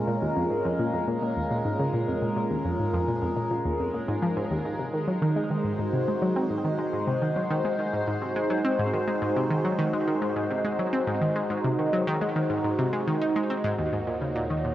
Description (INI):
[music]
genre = ambient, sequencer-driven space music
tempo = 105 BPM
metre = 4/4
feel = straight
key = unclear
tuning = A4 = 441 Hz
[part]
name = phased analog pad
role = sustained chords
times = 0.0-14.7 s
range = Ab3 to Db5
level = -27 LUFS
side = equal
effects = phaser, chorus
[part]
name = analog pluck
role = riff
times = 0.0-14.7 s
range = Eb2 to Eb4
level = -28 LUFS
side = equal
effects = chorus, analog delay
[part]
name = fat analog bass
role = bass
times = 13.8-14.7 s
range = Eb2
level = -39 LUFS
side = equal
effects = tube saturation
[sound]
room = wet huge ambient reverb, RT60 8.0 s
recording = worn, warbling old tape, cassette tape, warbly pitch drift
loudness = -24 LUFS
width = side -13 dB against mid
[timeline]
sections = 0.0-13.8 A section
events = filter sweep on synth arpeggio sound 0.0-13.8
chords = 0.0 Bbm7; 4.6 Ab7; 13.8 Ebm7